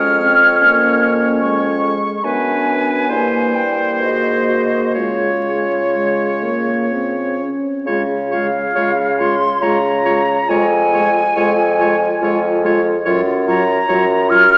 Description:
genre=classical, slow romantic movement for wind quintet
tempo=61-75 BPM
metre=3/4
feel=rubato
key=Db major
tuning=A4 = 440 Hz
part: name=concert flute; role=melody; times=0.0-14.6 s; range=Db5 to F6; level=-19 LUFS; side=equal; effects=none
part: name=bright oboe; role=second line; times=0.0-14.5 s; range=Cb5 to Db5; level=-25 LUFS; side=equal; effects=none
part: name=mellow French horn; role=accompaniment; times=0.0-14.5 s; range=Gb3 to Db4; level=-25 LUFS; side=equal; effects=none
part: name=warm clarinet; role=accompaniment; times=0.0-14.5 s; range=C4 to Gb4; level=-25 LUFS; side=equal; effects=none
part: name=mellow bassoon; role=bass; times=0.0-14.6 s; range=F2 to Db3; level=-21 LUFS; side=equal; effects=none
room=wet scoring stage reverb, RT60 1.9 s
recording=heard from further back in the room, vinyl crackle, small speaker sound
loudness=-16 LUFS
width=mono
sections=0.0-7.9 A section; 7.9-14.6 B section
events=none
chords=0.0 Db/F; 2.2 D/F#; 3.1 C7b13/G; 4.0 Ab7; 5.0 Db; 10.5 Db/F; 13.1 Gbmaj7

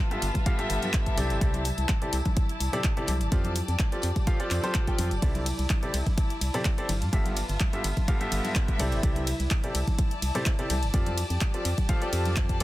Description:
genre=piano house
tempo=126 BPM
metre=4/4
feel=swing 53% on 16ths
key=C major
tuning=A4 = 440 Hz
part: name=dark chamber string section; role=texture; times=0.0-12.6 s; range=E4 to A5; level=-35 LUFS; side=left 2 dB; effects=sidechain pumping
part: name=clear baby grand piano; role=riff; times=0.1-12.6 s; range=G2 to G5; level=-32 LUFS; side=equal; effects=sidechain pumping, ping-pong delay
part: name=punchy analog drum machine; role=drums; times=0.1-12.6 s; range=handclaps, hi-hat, ride cymbal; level=-34 LUFS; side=equal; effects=overdrive
part: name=organ-like FM bass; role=bass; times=0.2-12.6 s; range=F1 to G2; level=-28 LUFS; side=equal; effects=sidechain pumping
part: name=tambourine and congas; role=percussion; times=0.2-12.6 s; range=none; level=-39 LUFS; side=left 3 dB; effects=none
part: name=electronic kick drum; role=drums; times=0.3-12.6 s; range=none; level=-26 LUFS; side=equal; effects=none
room=small room ambience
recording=dense, heavily limited modern master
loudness=-24 LUFS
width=side -16 dB against mid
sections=0.0-12.6 A section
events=none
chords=0.0 G13; 1.2 C69; 3.3 F69; 5.2 C69; 6.9 G13; 8.8 C69; 10.9 F69

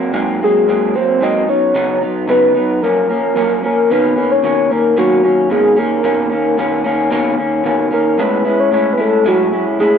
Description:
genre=indie pop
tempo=112 BPM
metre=4/4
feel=straight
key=unclear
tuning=A4 = 440 Hz
part: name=electric guitar through a small old amp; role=accompaniment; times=0.0-10.0 s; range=F#2 to E4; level=-16 LUFS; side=equal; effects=lush chorus, warbly pitch drift
part: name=soft octave-layered synth lead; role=melody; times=0.4-10.0 s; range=F#4 to D#5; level=-14 LUFS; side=equal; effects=wide subtle chorus, tape echo
room=moderate studio reverb, RT60 0.6 s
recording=none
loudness=-12 LUFS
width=side -7 dB against mid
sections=0.0-3.9 A section; 3.9-10.0 B section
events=none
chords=0.0 G#9; 1.5 C#9sus4; 2.8 F#maj7; 3.9 Bmaj9; 8.2 Amaj7

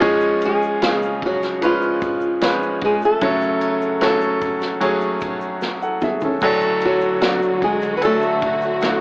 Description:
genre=pop ballad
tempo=75 BPM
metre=4/4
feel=straight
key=F# minor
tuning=A4 = 440 Hz
part: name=clear baby grand piano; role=accompaniment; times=0.0-9.0 s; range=D2 to F#5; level=-19 LUFS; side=equal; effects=cassette tape
part: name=unplugged drum kit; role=drums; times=0.0-9.0 s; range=crash cymbal, kick drum, ride cymbal, snare drum, toms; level=-26 LUFS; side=equal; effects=cassette tape
part: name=tube shaker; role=percussion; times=0.0-9.0 s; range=none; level=-54 LUFS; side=left 1 dB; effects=none
part: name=flamenco guitar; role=melody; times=0.5-9.0 s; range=E#3 to B4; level=-20 LUFS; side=equal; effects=cassette tape
part: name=warm studio string section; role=sustained chords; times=6.4-9.0 s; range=D3 to F#4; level=-26 LUFS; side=equal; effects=cassette tape
room=light reverb, studio ambience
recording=home recording on cassette, AM radio sound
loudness=-16 LUFS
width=side -28 dB against mid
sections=0.0-9.0 A section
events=drum fill 5.6-6.4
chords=0.0 C#; 3.2 F#m; 6.4 D

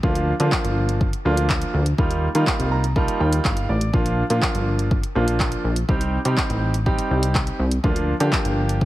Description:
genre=dance-pop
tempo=123 BPM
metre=4/4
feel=straight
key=Bb major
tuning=A4 = 440 Hz
part: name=clear baby grand piano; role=accompaniment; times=0.0-8.8 s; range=F3 to Bb5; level=-24 LUFS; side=right 1 dB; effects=sidechain pumping
part: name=plucky analog bass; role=bass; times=0.0-8.8 s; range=G1 to Eb3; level=-22 LUFS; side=equal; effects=sidechain pumping
part: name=deep house drum kit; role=drums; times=0.0-8.8 s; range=handclaps, hi-hat, kick drum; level=-23 LUFS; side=equal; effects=overdrive
room=little or no reverb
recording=none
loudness=-18 LUFS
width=side -16 dB against mid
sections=0.0-8.8 A section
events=grand piano fill 2.5-3.9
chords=0.0 Bb; 2.0 Ebadd9; 3.9 Bb; 5.9 Cm; 7.8 Bb

